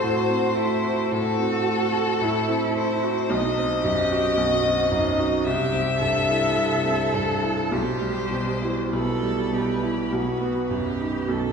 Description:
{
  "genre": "classical, slow romantic movement for piano trio",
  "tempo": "49-56 BPM",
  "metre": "4/4",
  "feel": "rubato",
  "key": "E minor",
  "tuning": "A4 = 440 Hz",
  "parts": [
    { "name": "rich violin", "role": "melody", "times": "0.0-11.3 s", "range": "A4 to E5", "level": "-26 LUFS", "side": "left 3 dB", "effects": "none" },
    { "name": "warm cello", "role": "second line", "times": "0.0-11.5 s", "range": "D#4 to A4", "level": "-28 LUFS", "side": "right 3 dB", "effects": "none" },
    { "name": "bright concert grand piano", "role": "accompaniment", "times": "0.0-11.5 s", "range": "B1 to F#4", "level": "-24 LUFS", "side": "right 1 dB", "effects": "none" }
  ],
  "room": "wet scoring stage reverb, RT60 1.7 s",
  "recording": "heard from further back in the room",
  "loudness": "-21 LUFS",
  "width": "side -6 dB against mid",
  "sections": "0.0-11.5 A section",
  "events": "none",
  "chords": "0.0 F#dim/A; 3.3 B; 5.5 C; 7.7 Em/B; 10.1 B"
}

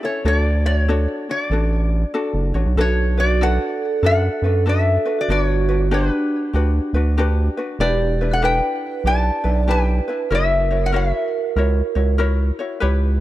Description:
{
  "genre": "Hawaiian",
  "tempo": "96 BPM",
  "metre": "4/4",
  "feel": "swing 64% on 8ths",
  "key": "B minor",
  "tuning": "A4 = 440 Hz",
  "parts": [
    { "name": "metal-body resonator slide guitar", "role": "melody", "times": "0.0-12.2 s", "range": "B4 to A5", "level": "-23 LUFS", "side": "left 2 dB", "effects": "analog delay" },
    { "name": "ukulele", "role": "accompaniment", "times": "0.0-13.2 s", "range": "C#4 to C#5", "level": "-25 LUFS", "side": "left 2 dB", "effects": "none" },
    { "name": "round analog bass", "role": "bass", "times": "0.2-13.2 s", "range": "E1 to F#2", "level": "-18 LUFS", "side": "equal", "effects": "none" },
    { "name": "vibraphone with medium hard mallets", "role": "second line", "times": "2.8-12.2 s", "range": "D4 to D5", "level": "-24 LUFS", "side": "right 5 dB", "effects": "analog delay" }
  ],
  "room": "light reverb, studio reverb",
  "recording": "dark, warm production",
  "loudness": "-17 LUFS",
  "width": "side -15 dB against mid",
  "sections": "0.0-2.8 A section; 2.8-13.2 B section",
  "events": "none",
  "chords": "0.3 Dmaj7; 2.8 Bm7; 5.3 Gmaj7; 7.8 Em7; 10.3 F#7"
}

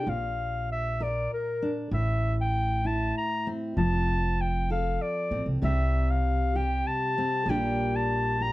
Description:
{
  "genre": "acoustic folk duo or small band",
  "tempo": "97 BPM",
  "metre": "3/4",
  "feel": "straight",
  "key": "C mixolydian",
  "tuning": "A4 = 440 Hz",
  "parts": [
    { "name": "warm clarinet", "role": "melody", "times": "0.0-8.5 s", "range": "Bb4 to Bb5", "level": "-29 LUFS", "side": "left 1 dB", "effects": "none" },
    { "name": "fingerpicked steel-string acoustic guitar", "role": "accompaniment", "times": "0.0-8.5 s", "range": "A2 to Bb4", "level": "-31 LUFS", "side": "left 1 dB", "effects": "none" },
    { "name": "upright bass", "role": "bass", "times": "0.1-8.5 s", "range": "F1 to C2", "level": "-28 LUFS", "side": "equal", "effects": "none" }
  ],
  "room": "light reverb",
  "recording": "dark, warm production",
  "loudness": "-25 LUFS",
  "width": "side -17 dB against mid",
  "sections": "0.0-8.5 A section",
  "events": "none",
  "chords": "0.1 Bb; 1.9 Am; 3.8 F; 5.6 C5; 7.5 Gm/Bb"
}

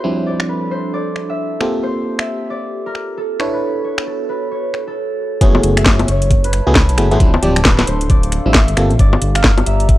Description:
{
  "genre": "UK garage, two-step garage",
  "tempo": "134 BPM",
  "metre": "4/4",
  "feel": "swing 61% on 16ths",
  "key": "unclear",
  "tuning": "A4 = 440 Hz",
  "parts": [
    { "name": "concert harp", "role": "melody", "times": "0.0-10.0 s", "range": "A4 to F5", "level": "-23 LUFS", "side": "right 1 dB", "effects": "tape echo" },
    { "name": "FM electric piano", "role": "stabs", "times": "0.0-8.9 s", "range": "F3 to C#5", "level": "-20 LUFS", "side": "equal", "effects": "chorus" },
    { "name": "warbly tape-like pad", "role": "texture", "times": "0.0-10.0 s", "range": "B3 to Bb5", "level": "-28 LUFS", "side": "right 1 dB", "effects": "chorus, built-in reverb, sidechain pumping" },
    { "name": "garage drum kit", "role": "drums", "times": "0.4-10.0 s", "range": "bongos, finger snaps, hi-hat, snare drum", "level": "-16 LUFS", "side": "left 1 dB", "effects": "none" },
    { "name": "dark detuned saw bass", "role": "bass", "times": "5.4-10.0 s", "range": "D1 to C#2", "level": "-16 LUFS", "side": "equal", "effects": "none" },
    { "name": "electronic kick drum", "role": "drums", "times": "5.4-10.0 s", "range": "none", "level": "-13 LUFS", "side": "equal", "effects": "none" }
  ],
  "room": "little or no reverb",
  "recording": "dry, gritty hardware recording, cassette tape",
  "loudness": "-13 LUFS",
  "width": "side -15 dB against mid",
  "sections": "0.0-5.4 A section; 5.4-10.0 B section",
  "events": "filter sweep on FM electric piano 0.0-5.4; drop 5.4-10.0",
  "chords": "0.0 Dm11; 1.6 Gm11; 3.4 Bm11; 5.4 F#m11; 7.2 Dm11; 8.8 Gm11"
}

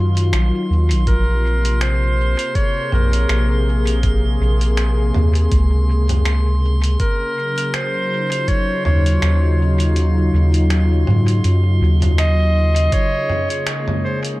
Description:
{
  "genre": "ambient dub",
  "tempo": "81 BPM",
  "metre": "4/4",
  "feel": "swing 56% on 16ths",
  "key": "Bb minor",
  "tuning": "A4 = 443 Hz",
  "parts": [
    { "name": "warm analog pad", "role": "sustained chords", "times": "0.0-14.4 s", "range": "C3 to Ab4", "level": "-23 LUFS", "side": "left 1 dB", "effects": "chorus" },
    { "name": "soft dub sub bass", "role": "bass", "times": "0.0-12.9 s", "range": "Bb1 to Ab2", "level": "-15 LUFS", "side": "equal", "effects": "none" },
    { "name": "drifting glass-harmonics texture", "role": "texture", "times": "0.0-12.9 s", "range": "C6", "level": "-32 LUFS", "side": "right 3 dB", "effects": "chorus, built-in reverb" },
    { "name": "lo-fi sampler-style drum kit", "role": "drums", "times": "0.2-14.4 s", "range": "finger snaps, hi-hat, toms", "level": "-26 LUFS", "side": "equal", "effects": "dub echo" },
    { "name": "clear clarinet", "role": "melody", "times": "1.1-14.2 s", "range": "Bb4 to Eb5", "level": "-23 LUFS", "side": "right 1 dB", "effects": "dub echo" },
    { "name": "electronic kick drum", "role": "drums", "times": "1.1-13.1 s", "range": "none", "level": "-19 LUFS", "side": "equal", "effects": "none" }
  ],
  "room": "light reverb",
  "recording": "none",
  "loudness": "-14 LUFS",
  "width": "side -19 dB against mid",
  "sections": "0.0-12.9 A section; 12.9-14.4 B section",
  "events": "kick drops out 10.0-12.9",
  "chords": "0.0 Ebmadd9; 1.1 Bbm9; 7.0 Ebm9; 12.9 Bbm7"
}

